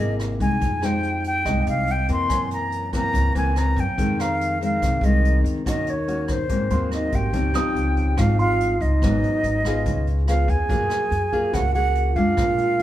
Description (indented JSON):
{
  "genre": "bossa nova",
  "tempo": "143 BPM",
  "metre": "4/4",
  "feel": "straight",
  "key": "unclear",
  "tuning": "A4 = 440 Hz",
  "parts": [
    { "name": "concert flute", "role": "melody", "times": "0.0-12.8 s", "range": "C5 to C6", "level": "-25 LUFS", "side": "right 1 dB", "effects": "none" },
    { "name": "nylon-string guitar", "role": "accompaniment", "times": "0.0-12.8 s", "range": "F2 to G#4", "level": "-25 LUFS", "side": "left 2 dB", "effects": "none" },
    { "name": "upright bass", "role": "bass", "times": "0.0-12.8 s", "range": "G#1 to Gb2", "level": "-23 LUFS", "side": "equal", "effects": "none" },
    { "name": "jazz brush drum kit", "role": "drums", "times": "0.2-12.8 s", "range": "hi-hat, kick drum, rim click", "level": "-29 LUFS", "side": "right 1 dB", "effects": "none" },
    { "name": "clear concert grand piano", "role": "accompaniment", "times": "0.8-9.0 s", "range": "C5 to Eb6", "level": "-33 LUFS", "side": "right 5 dB", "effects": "none" },
    { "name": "wooden-headed alto flute", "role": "second line", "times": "6.9-12.8 s", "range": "Eb4 to Ab4", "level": "-27 LUFS", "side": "right 1 dB", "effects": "none" }
  ],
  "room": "moderate large studio reverb, RT60 1.2 s",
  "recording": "band playing live in one room",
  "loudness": "-19 LUFS",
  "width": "side -13 dB against mid",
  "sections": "0.0-7.3 A section; 7.3-12.8 B section",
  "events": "none",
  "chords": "0.0 C7alt; 0.6 Fm9; 2.3 Gb7#11; 4.0 Fm7; 5.7 Ebm7; 6.5 Ab9; 7.3 Dbmaj9; 9.0 Abm7; 9.9 Db7; 10.7 Gbmaj9"
}